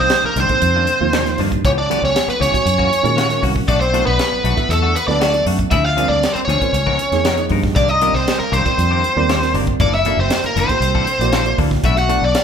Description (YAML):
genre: electric jazz fusion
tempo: 118 BPM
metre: 4/4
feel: straight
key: unclear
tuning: A4 = 439 Hz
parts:
  - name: biting lead guitar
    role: melody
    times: 0.0-12.4 s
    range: A4 to F#5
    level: -18 LUFS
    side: equal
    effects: overdrive
  - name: mellow tenor saxophone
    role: second line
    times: 0.0-12.4 s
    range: A3 to F#4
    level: -23 LUFS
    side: left 1 dB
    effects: none
  - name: bright reed electric piano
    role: accompaniment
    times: 0.0-12.4 s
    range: C3 to E5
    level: -24 LUFS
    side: right 7 dB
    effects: fast tremolo
  - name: semi-hollow electric guitar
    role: stabs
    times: 0.0-12.3 s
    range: Eb3 to A#4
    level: -24 LUFS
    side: left 5 dB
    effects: none
  - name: fingered electric bass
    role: bass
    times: 0.0-12.3 s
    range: F#1 to A#2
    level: -20 LUFS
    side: equal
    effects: none
  - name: tight funk drum kit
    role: drums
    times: 0.1-12.4 s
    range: hi-hat, kick drum, snare drum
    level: -22 LUFS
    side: equal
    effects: none
room: moderate large studio reverb, RT60 1.4 s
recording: band playing live in one room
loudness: -14 LUFS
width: side -7 dB against mid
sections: 0.0-12.4 A section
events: none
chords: 0.0 Cm11; 1.6 C#m7b5; 2.7 F#7; 3.7 Bm7; 5.7 Dm7b5; 6.7 C#13; 7.8 Cm9; 9.8 F#7alt; 11.8 Bm7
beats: 0.12 0.63 1.14 | 1.65 2.16 2.67 3.17 | 3.68 4.19 4.70 5.21 | 5.72 6.23 6.74 7.25 | 7.76 8.27 8.78 9.29 | 9.80 10.31 10.82 11.33 | 11.84 12.35